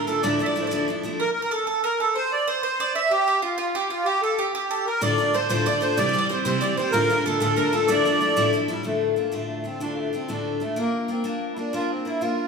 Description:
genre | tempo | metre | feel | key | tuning
celtic folk, Celtic jig | 125 BPM (dotted quarters) | 6/8 | straight | D minor | A4 = 440 Hz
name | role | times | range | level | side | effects
mandolin | second line | 0.0-8.5 s | F4 to E5 | -28 LUFS | right 4 dB | none
picked steel-string acoustic guitar | accompaniment | 0.0-1.2, 5.0-12.5 s | D2 to Bb4 | -24 LUFS | left 2 dB | none
accordion | melody | 0.1-12.5 s | G3 to E5 | -24 LUFS | right 1 dB | light tremolo tuning
room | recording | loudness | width
wet large studio reverb, RT60 1.4 s | band playing live in one room | -21 LUFS | side -5 dB against mid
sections
0.0-1.2 A section; 1.2-8.8 A section; 8.8-12.5 B section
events
none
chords
0.2 Dmadd9; 1.2 N.C.; 5.0 Dm; 6.0 C; 6.9 Dm; 7.9 Dmadd9; 8.8 Dm; 10.8 Bb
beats
| 0.24 0.72 | 1.20 1.67 | 2.15 2.63 | 3.11 3.59 | 4.07 4.54 | 5.02 5.50 | 5.98 6.46 | 6.93 7.41 | 7.89 8.37 | 8.85 9.33 | 9.81 10.29 | 10.77 11.25 | 11.73 12.21

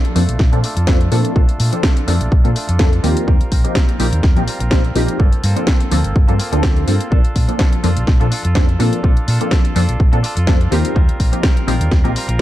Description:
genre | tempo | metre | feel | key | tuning
filtered disco house | 125 BPM | 4/4 | swing 54% on 16ths | Bb major | A4 = 440 Hz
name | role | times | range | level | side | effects
funky polysynth comp | accompaniment | 0.0-12.4 s | F3 to A4 | -21 LUFS | left 1 dB | chorus, phaser, sidechain pumping, low-pass filter
direct-recorded clean electric guitar | riff | 0.0-12.4 s | G3 to Bb4 | -27 LUFS | right 1 dB | sidechain pumping, low-pass filter
house drum kit | drums | 0.0-12.4 s | hi-hat, snare drum | -23 LUFS | equal | sidechain pumping on hats
overdriven fingered electric bass | bass | 0.2-12.4 s | G1 to Bb2 | -17 LUFS | equal | sidechain pumping, low-pass filter
electronic kick drum | drums | 0.4-12.0 s | none | -14 LUFS | equal | none
room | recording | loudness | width
digital ambience | dark, warm production | -13 LUFS | side -14 dB against mid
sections
0.0-12.4 A section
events
filter sweep 0.0-12.4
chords
0.0 Bbmaj7; 3.0 Eb69; 5.2 Gm11; 7.1 Bbmaj7; 10.7 Eb69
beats
0.40 0.88 | 1.36 1.84 2.32 2.80 | 3.28 3.76 4.24 4.72 | 5.20 5.68 6.16 6.64 | 7.12 7.60 8.08 8.56 | 9.04 9.52 10.00 10.48 | 10.96 11.44 11.92 12.40

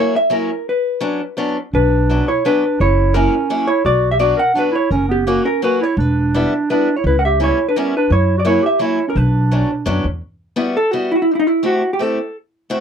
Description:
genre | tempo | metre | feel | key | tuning
musette waltz | 170 BPM | 3/4 | straight | B harmonic minor | A4 = 440 Hz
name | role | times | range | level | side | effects
vintage hollow-body jazz guitar | melody | 0.0-12.4 s | D#4 to F#5 | -17 LUFS | left 1 dB | none
picked acoustic archtop guitar | accompaniment | 0.0-12.8 s | F#3 to G4 | -20 LUFS | left 2 dB | none
growling clarinet | second line | 1.7-9.9 s | A#3 to A#4 | -19 LUFS | right 4 dB | none
upright bass | bass | 1.7-10.2 s | E1 to F#2 | -17 LUFS | equal | none
room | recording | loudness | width
little or no reverb | dry, close 1970s-style studio recording | -14 LUFS | side -7 dB against mid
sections
0.0-10.2 A section; 10.2-12.8 B section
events
none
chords
0.0 F#7; 0.7 Bmadd9; 2.8 F#7; 3.9 Bm; 4.9 F#; 6.0 Em7; 7.0 C#m7b5; 8.1 F#7; 9.2 Bmadd9; 10.2 Emadd9; 11.3 C6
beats
0.32 | 0.68 1.03 1.39 | 1.74 2.10 2.45 | 2.80 3.16 3.51 | 3.86 4.21 4.57 | 4.92 5.27 5.63 | 5.98 6.34 6.69 | 7.04 7.39 7.75 | 8.10 8.45 8.80 | 9.15 9.51 9.87 | 10.22 10.58 10.93 | 11.29 11.64 11.99 | 12.35 12.70

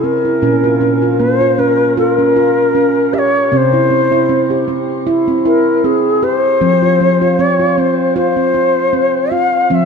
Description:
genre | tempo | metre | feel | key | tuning
world meditative, meditative tuned percussion | 78 BPM | 4/4 | swing 55% on 16ths | unclear | A4 = 444 Hz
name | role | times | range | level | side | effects
mellow Native American-style cedar flute | melody | 0.0-9.9 s | Ab4 to F5 | -13 LUFS | left 2 dB | shimmer reverb
handpan | arpeggios | 0.0-9.9 s | Bb2 to G4 | -14 LUFS | right 2 dB | shimmer reverb, ping-pong delay
room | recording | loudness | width
wet concert hall reverb, RT60 2.6 s | none | -10 LUFS | side -5 dB against mid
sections
0.4-9.9 A section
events
none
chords
0.4 Bbm; 3.5 C; 6.6 F5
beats
| 0.42 1.19 1.97 2.74 | 3.52 4.29 5.07 5.84 | 6.61 7.39 8.16 8.93 | 9.71

